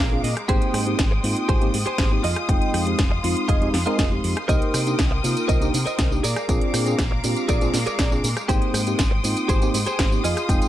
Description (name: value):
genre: nu-disco, nu disco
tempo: 120 BPM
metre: 4/4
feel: straight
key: unclear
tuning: A4 = 439 Hz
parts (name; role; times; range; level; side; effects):
- rich studio string section; sustained chords; 0.0-10.7 s; Ab3 to Eb6; -29 LUFS; left 2 dB; sidechain pumping
- direct-recorded clean electric guitar; riff; 0.0-10.7 s; F4 to F5; -28 LUFS; right 2 dB; analog chorus, tape echo
- fingered electric bass with an envelope filter; bass; 0.0-10.6 s; F1 to C3; -26 LUFS; equal; none
- mellow tine electric piano; accompaniment; 0.1-10.7 s; Ab3 to G5; -26 LUFS; equal; analog chorus, tape echo
- house drum kit; drums; 0.2-10.7 s; hi-hat, rim click, snare drum, tambourine; -27 LUFS; right 1 dB; none
- electronic kick drum; drums; 0.5-10.6 s; none; -22 LUFS; equal; none
room: little or no reverb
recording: none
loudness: -19 LUFS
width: side -13 dB against mid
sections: 0.0-10.7 A section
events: clean electric guitar fill 0.0-0.5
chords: 0.5 Abmaj7; 2.2 Fm7; 4.5 Cm7; 6.2 Bb7; 8.5 Abmaj7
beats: | 0.49 0.99 1.49 1.99 | 2.49 2.99 3.49 3.99 | 4.49 4.99 5.49 5.99 | 6.49 6.99 7.49 7.99 | 8.49 8.99 9.49 9.99 | 10.49